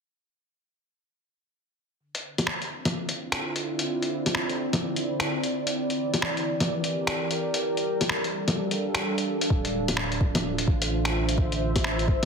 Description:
future garage; 128 BPM; 4/4; swing 63% on 16ths; D minor; A4 = 438 Hz
warbly tape-like pad; sustained chords; 2.8-12.3 s; D3 to F5; -28 LUFS; right 1 dB; chorus, built-in reverb, vintage 12-bit sampler grit, sidechain pumping
lo-fi sampler-style drum kit; drums; 2.1-12.3 s; bongos, finger snaps, hi-hat; -28 LUFS; left 1 dB
warm sub bass; bass; 9.5-12.3 s; D1 to A1; -30 LUFS; equal; sidechain pumping
electronic kick drum; drums; 9.5-12.2 s; -24 LUFS; equal; overdrive
wet recital hall reverb, RT60 1.4 s, digital ambience; heavily compressed radio sound; -24 LUFS; side -6 dB against mid
2.0-9.5 A section; 9.5-12.3 B section
2.0 Dm9; 5.8 C7/E; 7.6 Gm7; 9.5 Dm9

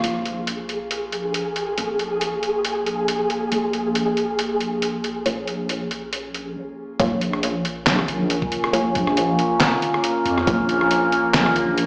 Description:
deep dubstep; 138 BPM; 4/4; swing 56% on 16ths, half-time; Bb minor; A4 = 439 Hz
overtone-sweeping drone; sustained chords; 0.0-11.9 s; Bb3 to F4; -27 LUFS; equal; chorus, built-in reverb, vintage 12-bit sampler grit
filtered dub chord stab; stabs; 0.0-10.6 s; Bb3 to Db5; -29 LUFS; equal; phaser, dub echo
deep soft wobble bass; bass; 0.0-11.9 s; Bb1 to F2; -30 LUFS; equal; chorus
trip hop sampler-style drum kit; drums; 0.0-11.9 s; handclaps, hi-hat, rim click, snare drum; -26 LUFS; equal
flickering grainy texture; texture; 0.4-6.6 s; Ab4; -27 LUFS; equal; built-in reverb
electronic kick drum; drums; 7.0-10.6 s; -28 LUFS; equal
wet echo chamber reverb, RT60 1.8 s; played on a big sound system in a bare room, large studio reverb, small speaker sound; -22 LUFS; mono
0.0-7.0 A section; 7.0-11.9 B section
stop 6.6-7.0; drop 7.0-11.9
0.0 Bbm

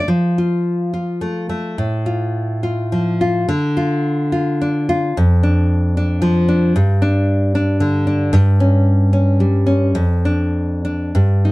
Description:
romantic piece for solo classical guitar; 97-117 BPM; 3/4; rubato; F major, D minor from 6.8 s; A4 = 441 Hz
nylon-string guitar; solo; 0.0-11.5 s; F2 to F4; -14 LUFS; equal
light reverb; dry, close 1970s-style studio recording; -14 LUFS; side -20 dB against mid
0.1-11.5 A section
0.1 F; 1.8 F/A; 3.5 Dm; 5.2 Dm/F; 6.8 G5; 8.3 N.C.; 10.0 Dm/F

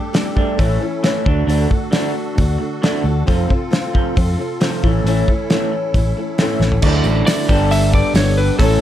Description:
folk rock and heartland rock; 135 BPM; 4/4; straight; A4 = 440 Hz
picked steel-string acoustic guitar; accompaniment; 0.0-8.8 s; A2 to A4; -23 LUFS; left 5 dB
musette accordion; sustained chords; 0.0-8.8 s; B3 to A4; -30 LUFS; right 4 dB
electric guitar through a small old amp; riff; 0.0-8.8 s; F2 to A4; -22 LUFS; right 3 dB
cloth-damped thuddy drum kit; drums; 0.1-8.7 s; crash cymbal, hi-hat, kick drum, snare drum, toms; -18 LUFS; equal
fingered electric bass; bass; 0.6-8.8 s; G1 to F2; -17 LUFS; equal
bright upright piano; accompaniment; 6.8-8.8 s; E4 to D5; -30 LUFS; right 9 dB
tambourine; percussion; 6.8-8.6 s; -37 LUFS; right 17 dB
electric slide guitar; melody; 7.3-8.8 s; A4 to E5; -20 LUFS; left 2 dB; tape echo
light reverb; dark, warm production; -14 LUFS; side -12 dB against mid
0.0-6.8 A section; 6.8-8.8 B section
drum fill 6.6
0.0 Gsus2; 0.6 A; 1.3 D; 3.3 F; 4.8 A; 6.8 Dadd9; 7.5 Gadd9

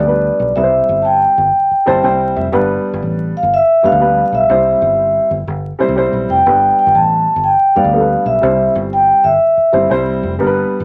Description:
uptempo 1960s-style soul; 122 BPM; 4/4; swing 65% on 8ths; A4 = 440 Hz
vibraphone with soft mallets; melody; 0.0-9.9 s; D5 to A5; -14 LUFS; equal
dark upright piano; accompaniment; 0.0-10.8 s; G3 to A5; -19 LUFS; equal
fingered electric bass; bass; 0.0-10.8 s; F1 to G2; -24 LUFS; equal
moderate club reverb, RT60 0.6 s; vinyl crackle; -13 LUFS; mono
0.0-10.8 A section
upright piano fill 1.6-2.5
0.0 G; 0.6 C; 2.5 G; 4.5 C; 6.5 G; 8.4 C

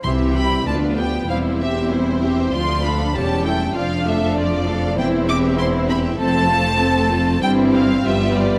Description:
quick classical-period movement for symphony orchestra; 98 BPM; 2/4; straight; C major; A4 = 440 Hz
rich studio violin section; melody; 0.0-8.6 s; C5 to D6; -26 LUFS; equal
rich studio violin section; second line; 0.0-8.6 s; E4 to G5; -30 LUFS; equal
rich studio viola section; accompaniment; 0.0-8.6 s; E3 to G4; -26 LUFS; equal
warm French horn section; sustained chords; 0.0-8.6 s; E3 to D4; -25 LUFS; equal
rich studio cello section; bass; 0.0-8.6 s; D2 to C3; -27 LUFS; equal
warm studio double bass section; bass; 0.0-8.6 s; E1 to D2; -26 LUFS; equal
timpani; percussion; 0.0-0.6 s; C3; -33 LUFS; equal
wet scoring stage reverb, RT60 1.8 s; -19 LUFS; mono
0.0-8.6 A section
0.0 C; 0.7 G7/D; 1.3 C/E; 2.5 Dm; 3.1 A7/E; 3.8 Dm/F; 5.0 C/E; 6.2 F; 7.4 C/G; 8.1 G7

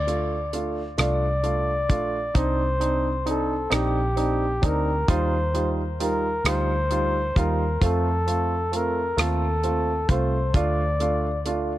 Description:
six-eight pop ballad; 44 BPM (dotted quarters); 6/8; straight; A4 = 440 Hz
mellow flugelhorn; melody; 0.0-11.4 s; G4 to D5; -26 LUFS; left 1 dB; ping-pong delay
vintage muted fingered electric bass; bass; 0.0-11.8 s; Bb1 to F2; -26 LUFS; equal
warm grand piano; accompaniment; 0.1-11.7 s; G3 to F4; -27 LUFS; right 3 dB
damped 70s drum kit; drums; 0.1-11.7 s; hi-hat, kick drum, rim click; -24 LUFS; equal
small room ambience; dark, warm production; -21 LUFS; side -14 dB against mid
0.0-11.8 A section
0.0 Dm; 2.4 Cmadd9; 5.1 Ebadd9; 7.8 F; 10.5 Dm

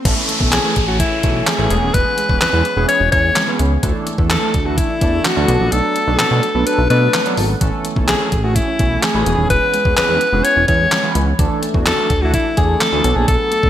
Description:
dance-pop; 127 BPM; 4/4; straight; A major; A4 = 440 Hz
chorused polysynth; accompaniment; 0.0-13.7 s; E3 to B4; -22 LUFS; right 2 dB; sidechain pumping
swell and downlifter; sound effects; 0.0-3.8 s; -24 LUFS; equal
soft round pluck; arpeggios; 0.1-13.7 s; G#3 to D4; -29 LUFS; right 4 dB
chorused synth bass; bass; 0.1-13.7 s; D#1 to B2; -18 LUFS; equal; sidechain pumping
detuned 8-bit digital drum machine; drums; 0.1-13.7 s; crash cymbal, handclaps, hi-hat, kick drum, snare drum; -19 LUFS; equal; gated reverb
clear alto saxophone; melody; 0.5-13.7 s; E4 to C#5; -17 LUFS; left 2 dB
moderate lush hall reverb, RT60 1.7 s; bright 1980s-style digital production; -13 LUFS; side -11 dB against mid
0.1-13.7 A section
kick muted 5.7-7.6
0.1 A; 1.7 E6; 3.8 Dsus2; 5.5 Bm7; 7.6 A; 9.3 E6; 11.4 Dsus2; 13.0 Bm7

